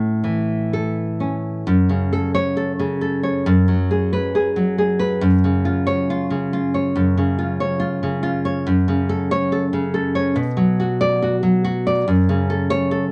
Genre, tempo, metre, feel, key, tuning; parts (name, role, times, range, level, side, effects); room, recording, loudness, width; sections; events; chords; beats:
romantic piece for solo classical guitar; 69 BPM; 4/4; uneven beats, rubato; F# minor; A4 = 439 Hz
nylon-string guitar; solo; 0.0-13.1 s; F#2 to D5; -20 LUFS; equal
moderate small room reverb, RT60 0.5 s; nothing above 10.7 kHz; -20 LUFS; mono
0.0-1.7 A section; 1.7-13.1 B section
0.0 A; 1.7 F#m; 3.5 F#sus24; 5.2 C#/F#; 8.7 F#m; 10.4 Bm; 12.1 F#m
0.73 | 1.68 2.59 3.48 4.36 | 5.23 6.11 6.96 7.81 | 8.67 9.53 10.37 11.23 | 12.09 12.92